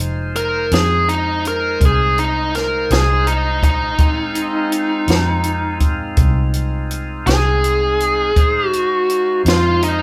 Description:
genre	slow blues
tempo	55 BPM (dotted quarters)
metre	12/8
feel	straight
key	F minor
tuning	A4 = 438 Hz
part	bright tonewheel organ	sustained chords	0.0-10.0 s	Ab3 to C5	-28 LUFS	equal	slow rotary speaker
part	vintage muted fingered electric bass	bass	0.0-10.0 s	F1 to F2	-22 LUFS	equal	none
part	compact cocktail drum kit	drums	0.0-10.0 s	hi-hat, kick drum, snare drum	-20 LUFS	equal	none
part	biting lead guitar	melody	0.4-10.0 s	Eb4 to Bb4	-19 LUFS	equal	overdrive
room	moderate large studio reverb, RT60 0.8 s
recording	band playing live in one room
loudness	-17 LUFS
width	mono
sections	0.0-10.0 A section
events	lead electric guitar solo 0.0-10.0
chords	0.0 Fm7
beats	0.72 1.81 2.90 | 3.99 5.08 6.18 7.27 | 8.36 9.45

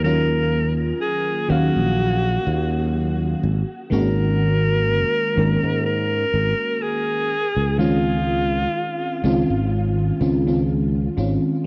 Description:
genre	vaporwave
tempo	62 BPM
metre	4/4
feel	swing 54% on 16ths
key	unclear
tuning	A4 = 441 Hz
part	bright alto saxophone	melody	0.0-9.7 s	F4 to Bb4	-26 LUFS	equal	tape echo
part	FM electric piano with soft pad layer	accompaniment	0.0-11.7 s	Eb3 to F5	-25 LUFS	equal	subtle chorus, cassette tape
part	sustaining fretless electric bass	bass	0.0-11.4 s	Ab1 to Ab2	-24 LUFS	equal	none
room	light reverb, studio reverb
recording	cassette tape, nothing above 7.5 kHz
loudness	-21 LUFS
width	mono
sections	0.0-11.7 A section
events	none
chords	0.0 Ebm7; 3.4 Ab9sus4; 7.3 Dbmaj7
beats	| 0.05 1.02 1.99 2.95 | 3.92 4.89 5.86 6.82 | 7.79 8.76 9.73 10.70 | 11.66

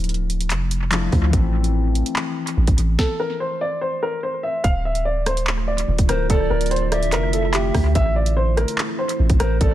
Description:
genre	hip hop, drill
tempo	145 BPM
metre	4/4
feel	half-time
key	D minor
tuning	A4 = 440 Hz
part	concert harp	accompaniment	0.0-4.7 s	E3 to E4	-28 LUFS	left 6 dB	low-pass filter, tape echo
part	long sustained 808-style bass	bass	0.0-9.7 s	D1 to D2	-20 LUFS	equal	none
part	drill drum kit	drums	0.0-9.7 s	handclaps, hi-hat, kick drum, rim click, snare drum	-22 LUFS	equal	tape echo
part	warm upright piano	melody	3.0-9.7 s	G4 to F5	-23 LUFS	equal	low-pass filter, tape echo
part	deep dark ambient pad	sustained chords	5.4-9.7 s	D3 to F4	-27 LUFS	right 3 dB	chorus, built-in reverb
part	reedy pan flute	second line	6.1-9.7 s	C5 to E5	-28 LUFS	left 2 dB	tape echo
room	small room ambience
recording	echo-heavy mix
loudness	-18 LUFS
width	side -13 dB against mid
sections	0.0-4.6 A section; 4.6-9.7 B section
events	break 0.0-3.0; stop 3.0-4.6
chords	0.0 Dmadd9; 1.3 Am; 4.6 Dmadd9; 8.0 Am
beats	0.09 0.51 0.92 | 1.33 1.75 2.16 2.57 | 2.99 3.40 3.81 4.23 | 4.64 5.06 5.47 5.88 | 6.30 6.71 7.13 7.54 | 7.95 8.37 8.78 9.19 | 9.61

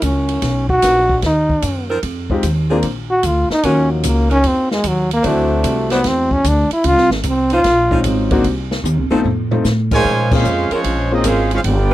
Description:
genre	jazz, big band swing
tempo	150 BPM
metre	4/4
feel	swing 66% on 8ths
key	Bb minor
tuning	A4 = 439 Hz
part	breathy trombone	melody	0.0-8.0 s	F3 to Gb4	-15 LUFS	equal	none
part	warm saxophone section	sustained chords	0.0-11.9 s	F3 to C5	-21 LUFS	right 2 dB	none
part	upright bass	bass	0.0-11.9 s	G1 to Bb2	-18 LUFS	equal	none
part	open jazz drum kit	drums	0.0-11.8 s	crash cymbal, hi-hat, kick drum, ride cymbal, snare drum, toms	-23 LUFS	equal	none
part	clear baby grand piano	accompaniment	2.3-11.2 s	Ab3 to Bb4	-20 LUFS	left 3 dB	none
part	warm trumpet section	melody	9.9-11.9 s	Ab3 to Ab5	-19 LUFS	right 2 dB	none
part	clear trombone section	second line	9.9-11.9 s	Db3 to G4	-21 LUFS	right 2 dB	none
room	little or no reverb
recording	dry, close 1970s-style studio recording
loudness	-13 LUFS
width	side -14 dB against mid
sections	0.0-10.0 A section; 10.0-11.9 B section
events	trombone solo 0.0-10.0; drum fill 8.8-9.6; band accent 10.2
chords	0.4 Bmaj7; 2.0 Fm7; 2.8 Bb; 3.6 Ebm7; 5.2 D9; 6.8 Dbmaj9; 8.4 F7; 10.0 Bbm9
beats	0.02 | 0.43 0.83 1.23 1.63 | 2.03 2.43 2.83 3.24 | 3.64 4.04 4.44 4.84 | 5.24 5.64 6.04 6.44 | 6.84 7.25 7.64 8.04 | 8.45 8.85 9.24 9.64 | 10.04 10.44 10.84 11.24 | 11.64

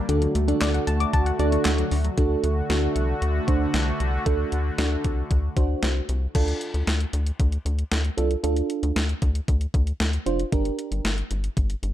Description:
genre	synth-pop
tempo	115 BPM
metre	4/4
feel	straight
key	unclear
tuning	A4 = 440 Hz
part	sweeping resonant pad	sustained chords	0.0-6.3 s	D3 to F#4	-29 LUFS	equal	chorus
part	soft round pluck	arpeggios	0.0-2.1 s	D3 to D6	-29 LUFS	left 3 dB	chorus, tape echo
part	mellow FM electric piano	accompaniment	0.1-11.1 s	D4 to C5	-27 LUFS	right 4 dB	chorus, phaser
part	rubbery square bass	bass	0.1-11.9 s	F1 to D2	-24 LUFS	equal	none
part	clean 12-bit digital drum machine	drums	0.1-11.9 s	crash cymbal, handclaps, hi-hat, kick drum, snare drum	-26 LUFS	equal	overdrive
room	light reverb, digital ambience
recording	dark, warm production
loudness	-21 LUFS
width	side -12 dB against mid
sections	0.0-2.2 A section; 2.2-6.3 B section; 6.3-11.9 C section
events	none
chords	0.1 D; 6.3 Dm; 10.5 Gm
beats	| 0.09 0.61 1.13 1.65 | 2.18 2.70 3.22 3.74 | 4.26 4.79 5.31 5.83 | 6.35 6.87 7.39 7.92 | 8.44 8.96 9.48 10.00 | 10.52 11.05 11.57

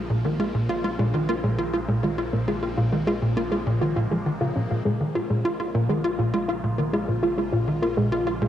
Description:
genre	ambient, sequencer-driven space music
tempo	101 BPM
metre	4/4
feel	straight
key	Bb minor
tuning	A4 = 440 Hz
part	evolving wavetable pad	sustained chords	0.0-8.5 s	Db3 to F4	-33 LUFS	left 1 dB	phaser, built-in reverb, cassette tape, shimmer reverb
part	soft round pluck	arpeggios	0.0-8.5 s	Ab3 to F4	-28 LUFS	right 1 dB	chorus, auto-pan, cassette tape, tape echo, shimmer reverb
part	analog drone	bass	0.0-8.5 s	Bb1	-36 LUFS	equal	chorus
part	tight sequencer bass	riff	0.1-8.5 s	Bb2 to F4	-24 LUFS	equal	analog chorus, cassette tape, tape echo, shimmer reverb
room	wet spring reverb, RT60 1.3 s, digital ambience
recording	home recording on cassette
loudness	-22 LUFS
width	side -11 dB against mid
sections	0.0-8.5 A section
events	filter sweep on synth arpeggio sound 0.0-8.5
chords	0.0 Bbm7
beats	| 0.10 0.69 1.29 1.88 | 2.48 3.07 3.67 4.26 | 4.85 5.45 6.04 6.63 | 7.23 7.82 8.42

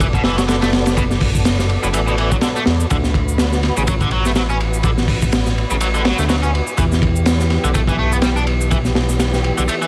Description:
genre	breakbeat, breaks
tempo	124 BPM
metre	4/4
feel	swing 57% on 16ths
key	unclear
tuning	A4 = 440 Hz
part	mellow tonewheel organ	sustained chords	0.0-9.9 s	E3 to D5	-28 LUFS	equal	chorus vibrato, slow rotary speaker, sidechain pumping
part	biting overdriven guitar	riff	0.0-9.9 s	A2 to D4	-25 LUFS	equal	vintage 12-bit sampler grit, digital delay
part	fat analog bass	bass	0.0-9.7 s	F#1 to E2	-21 LUFS	equal	none
part	crunchy breakbeat drum kit	drums	0.0-9.8 s	hi-hat, kick drum, ride cymbal, snare drum	-20 LUFS	equal	none
part	shaker	drums	0.0-9.9 s	none	-34 LUFS	equal	none
part	swell	sound effects	9.8-9.9 s	none	-34 LUFS	equal	none
room	little or no reverb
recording	vinyl crackle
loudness	-17 LUFS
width	mono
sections	0.0-9.9 A section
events	none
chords	0.0 Bm7; 2.9 D6; 6.8 Em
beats	0.01 0.49 | 0.97 1.46 1.94 2.43 | 2.91 3.39 3.88 4.36 | 4.85 5.33 5.81 6.30 | 6.78 7.26 7.75 8.23 | 8.72 9.20 9.68

